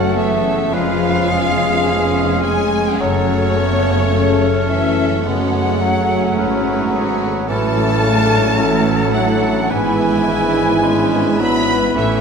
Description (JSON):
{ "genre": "classical, slow romantic movement for symphony orchestra", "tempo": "53 BPM", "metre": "4/4", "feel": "rubato", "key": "F# minor", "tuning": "A4 = 440 Hz", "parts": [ { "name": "rich symphonic violin section", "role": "melody", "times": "0.0-12.2 s", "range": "C#5 to B5", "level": "-24 LUFS", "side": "equal", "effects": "none" }, { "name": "bright silver concert flute", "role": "second line", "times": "0.0-12.2 s", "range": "C#5 to B5", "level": "-23 LUFS", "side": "left 1 dB", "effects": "none" }, { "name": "mellow cor anglais", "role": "second line", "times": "0.0-12.2 s", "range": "G#4 to B4", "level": "-26 LUFS", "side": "left 2 dB", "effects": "none" }, { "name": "warm clarinet", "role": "second line", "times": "0.0-12.2 s", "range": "B3 to E4", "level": "-24 LUFS", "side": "left 1 dB", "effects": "none" }, { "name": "warm symphonic violin section", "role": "second line", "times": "0.0-12.2 s", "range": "E4 to E5", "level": "-28 LUFS", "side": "left 4 dB", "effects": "none" }, { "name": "rich studio viola section", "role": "accompaniment", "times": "0.0-12.2 s", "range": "E3 to E#4", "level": "-24 LUFS", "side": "right 1 dB", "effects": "none" }, { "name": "warm bassoon", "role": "accompaniment", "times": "0.0-12.2 s", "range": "C#3 to A3", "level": "-23 LUFS", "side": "right 2 dB", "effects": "none" }, { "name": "mellow French horn section", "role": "sustained chords", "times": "0.0-12.2 s", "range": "C#3 to B3", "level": "-22 LUFS", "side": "left 3 dB", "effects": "none" }, { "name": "warm trombone section", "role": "sustained chords", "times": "0.0-12.2 s", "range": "C#3 to D4", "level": "-26 LUFS", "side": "right 6 dB", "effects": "none" }, { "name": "concert harp", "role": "arpeggios", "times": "0.0-12.2 s", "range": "E#2 to D4", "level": "-25 LUFS", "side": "left 6 dB", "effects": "none" }, { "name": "rich symphonic double bass section", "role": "bass", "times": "0.0-12.2 s", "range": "E#1 to A1", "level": "-23 LUFS", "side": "right 3 dB", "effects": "none" }, { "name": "warm symphonic cello section", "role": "bass", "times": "0.0-12.2 s", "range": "E#2 to A2", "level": "-24 LUFS", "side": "right 4 dB", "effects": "none" } ], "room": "wet scoring stage reverb, RT60 2.0 s", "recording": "minimal, uncompressed stereo recording", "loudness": "-13 LUFS", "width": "side -6 dB against mid", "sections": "0.0-12.2 A section", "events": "none", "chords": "0.0 F#m; 0.7 C#7/E#; 3.0 F#m; 7.5 A; 9.7 E7/G#" }